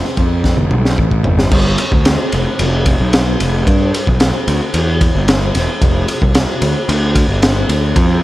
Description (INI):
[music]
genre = psychedelic rock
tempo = 112 BPM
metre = 4/4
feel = straight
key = G mixolydian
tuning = A4 = 438 Hz
[part]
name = crunchy breakbeat drum kit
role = drums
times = 0.0-8.1 s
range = crash cymbal, kick drum, ride cymbal, snare drum, toms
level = -14 LUFS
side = equal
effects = none
[part]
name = fuzz picked electric bass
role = bass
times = 0.2-8.2 s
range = E1 to G2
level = -15 LUFS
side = equal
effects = overdrive
[sound]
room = light reverb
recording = none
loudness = -11 LUFS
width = side -16 dB against mid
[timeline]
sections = 0.0-1.5 A section; 1.5-8.2 B section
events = drum fill 0.5-1.5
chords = none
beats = 0.45 0.99 | 1.53 2.06 2.60 3.13 | 3.67 4.21 4.74 5.28 | 5.82 6.35 6.89 7.42 | 7.96